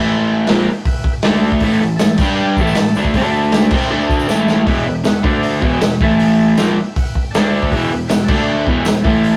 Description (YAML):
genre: garage rock duo or trio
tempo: 157 BPM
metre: 4/4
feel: straight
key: E minor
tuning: A4 = 440 Hz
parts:
  - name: combo organ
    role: sustained chords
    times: 0.0-9.4 s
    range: G4 to B5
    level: -30 LUFS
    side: equal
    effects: none
  - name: crunchy overdriven guitar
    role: riff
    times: 0.0-9.4 s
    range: E2 to G4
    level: -17 LUFS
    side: equal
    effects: none
  - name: fuzz fingered electric bass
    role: bass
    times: 0.0-9.4 s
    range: E1 to G2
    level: -27 LUFS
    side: equal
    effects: overdrive
  - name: crunchy breakbeat drum kit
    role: drums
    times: 0.5-9.3 s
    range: crash cymbal, hi-hat, kick drum, snare drum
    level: -19 LUFS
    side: equal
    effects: none
  - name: tambourine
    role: percussion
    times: 1.7-8.9 s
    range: none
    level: -39 LUFS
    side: equal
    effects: none
room: moderate studio reverb, RT60 0.6 s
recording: rough rehearsal-room recording, tube saturation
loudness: -15 LUFS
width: mono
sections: 0.0-4.7 A section; 4.7-9.4 B section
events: drum fill 4.3-4.7; transistor combo organ fill 6.6-7.7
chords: 0.5 Em; 1.2 D5; 1.6 A5; 2.2 G5; 2.6 A5; 3.1 D5; 3.7 A5; 3.9 D5; 4.3 A5; 4.7 Em; 5.2 D5; 5.6 Em; 6.0 A5; 6.6 Em; 7.3 D5; 7.7 Em; 8.3 D5; 8.7 Em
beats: | 0.10 0.48 0.86 1.24 | 1.62 2.01 2.39 2.77 | 3.15 3.53 3.91 4.29 | 4.67 5.06 5.44 5.82 | 6.20 6.58 6.96 7.34 | 7.72 8.10 8.48 8.86 | 9.24